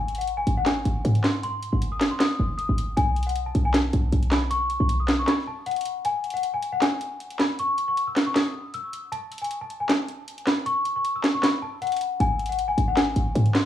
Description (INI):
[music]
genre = hip hop, trap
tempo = 156 BPM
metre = 4/4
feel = half-time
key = unclear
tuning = A4 = 440 Hz
[part]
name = worn celesta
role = melody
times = 0.0-13.7 s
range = F#5 to E6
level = -27 LUFS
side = left 3 dB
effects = low-pass filter, tape echo
[part]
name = short 808-style bass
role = bass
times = 0.0-5.3, 12.2-13.7 s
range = F#1 to G#2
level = -24 LUFS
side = equal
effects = none
[part]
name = trap drum kit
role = drums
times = 0.1-13.6 s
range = handclaps, hi-hat, snare drum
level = -25 LUFS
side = equal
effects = none
[sound]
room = light reverb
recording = worn, warbling old tape, cassette tape, warbly pitch drift, studio reverb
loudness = -22 LUFS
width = side -11 dB against mid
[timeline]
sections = 0.0-13.7 A section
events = break 5.3-6.0; kick muted 6.0-12.2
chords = 0.0 G#5; 3.0 B5; 6.0 N.C.; 12.2 G#5